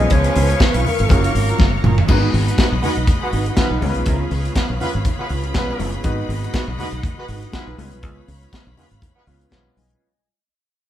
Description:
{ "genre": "disco", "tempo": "121 BPM", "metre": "4/4", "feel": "swing 56% on 16ths", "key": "unclear", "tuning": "A4 = 437 Hz", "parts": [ { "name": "mellow alto flute", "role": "melody", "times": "0.0-1.3 s", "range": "A#4 to D#5", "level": "-22 LUFS", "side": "equal", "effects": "none" }, { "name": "clear grand piano", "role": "accompaniment", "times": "0.0-10.2 s", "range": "E#3 to G#5", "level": "-28 LUFS", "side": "left 3 dB", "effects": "none" }, { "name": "mellow electric guitar", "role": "accompaniment", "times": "0.0-10.1 s", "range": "C#4 to B4", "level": "-28 LUFS", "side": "right 4 dB", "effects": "none" }, { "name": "clear studio string section", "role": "sustained chords", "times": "0.0-10.0 s", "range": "G#4 to C#6", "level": "-28 LUFS", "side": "left 1 dB", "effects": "none" }, { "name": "mellow horn section", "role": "stabs", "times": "0.0-9.9 s", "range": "E#3 to B4", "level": "-27 LUFS", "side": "right 1 dB", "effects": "none" }, { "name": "fingered electric bass", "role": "bass", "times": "0.0-9.9 s", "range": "F#1 to C#2", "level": "-20 LUFS", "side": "equal", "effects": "none" }, { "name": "modern studio drum kit", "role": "drums", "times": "0.1-10.0 s", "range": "crash cymbal, hi-hat, kick drum, snare drum, toms", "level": "-19 LUFS", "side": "equal", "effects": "none" }, { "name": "congas", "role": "percussion", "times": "0.1-9.9 s", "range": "none", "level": "-28 LUFS", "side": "left 2 dB", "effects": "none" } ], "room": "moderate large studio reverb, RT60 1.0 s", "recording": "band playing live in one room", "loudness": "-16 LUFS", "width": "side -12 dB against mid", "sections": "0.0-2.1 A section; 2.1-10.0 B section", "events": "drum fill 1.6-2.1; fade-out 2.1-10.0; grand piano fill 9.0-10.0", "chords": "0.0 C#7; 1.1 F#maj7; 2.1 G#m7; 3.8 C#7; 6.0 G#m7; 7.8 C#7" }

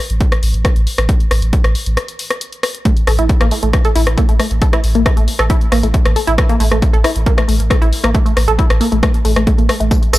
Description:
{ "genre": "driving peak-time techno", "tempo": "136 BPM", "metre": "4/4", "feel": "straight", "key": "unclear", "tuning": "A4 = 438 Hz", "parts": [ { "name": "saturated sub bass", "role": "bass", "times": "0.1-10.2 s", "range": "A1", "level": "-16 LUFS", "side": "equal", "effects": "tube saturation, sidechain pumping, low-pass filter" }, { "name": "punchy analog drum machine", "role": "drums", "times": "0.1-10.2 s", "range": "hi-hat, rim click, tambourine", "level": "-19 LUFS", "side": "left 1 dB", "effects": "overdrive" }, { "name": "electronic kick drum", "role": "drums", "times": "0.2-10.0 s", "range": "none", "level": "-14 LUFS", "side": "equal", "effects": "none" }, { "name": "tight sequenced synth", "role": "riff", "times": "2.9-10.2 s", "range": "A3 to A4", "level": "-18 LUFS", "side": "equal", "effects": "chorus, sidechain pumping, tape echo" } ], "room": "little or no reverb", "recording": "dry, gritty hardware recording, transformer saturation", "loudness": "-12 LUFS", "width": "side -17 dB against mid", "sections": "0.0-10.2 A section", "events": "break 2.0-2.9", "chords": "0.0 A5" }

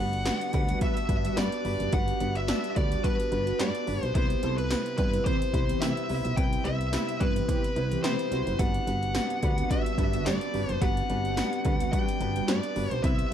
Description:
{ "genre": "1980s-style pop", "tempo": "108 BPM", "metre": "4/4", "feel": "swing 55% on 16ths", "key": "G major", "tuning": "A4 = 438 Hz", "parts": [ { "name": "bluesy overdriven lead guitar", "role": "melody", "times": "0.0-13.3 s", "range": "B4 to G5", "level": "-32 LUFS", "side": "equal", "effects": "distortion" }, { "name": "warm concert grand piano", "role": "accompaniment", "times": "0.0-13.3 s", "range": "G2 to D5", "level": "-34 LUFS", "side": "equal", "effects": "none" }, { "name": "ethereal airy pad", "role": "sustained chords", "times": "0.1-13.3 s", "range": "C3 to G4", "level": "-36 LUFS", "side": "equal", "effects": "ensemble chorus, built-in reverb" }, { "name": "solid FM bass", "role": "bass", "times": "0.0-13.2 s", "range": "F#1 to C3", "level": "-31 LUFS", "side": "equal", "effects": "none" }, { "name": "80s electronic pad drums", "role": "drums", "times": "0.1-13.3 s", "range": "hi-hat, kick drum, snare drum, tambourine", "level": "-29 LUFS", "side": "equal", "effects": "none" }, { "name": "mellow synth brass", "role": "stabs", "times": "0.7-12.6 s", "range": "D3 to B4", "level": "-34 LUFS", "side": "right 2 dB", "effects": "chorus" } ], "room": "little or no reverb", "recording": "dry, close 1970s-style studio recording", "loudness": "-25 LUFS", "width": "side -9 dB against mid", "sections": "0.0-13.3 A section", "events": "none", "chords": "0.0 Gmaj7; 4.2 Cmaj7; 8.6 Gmaj7" }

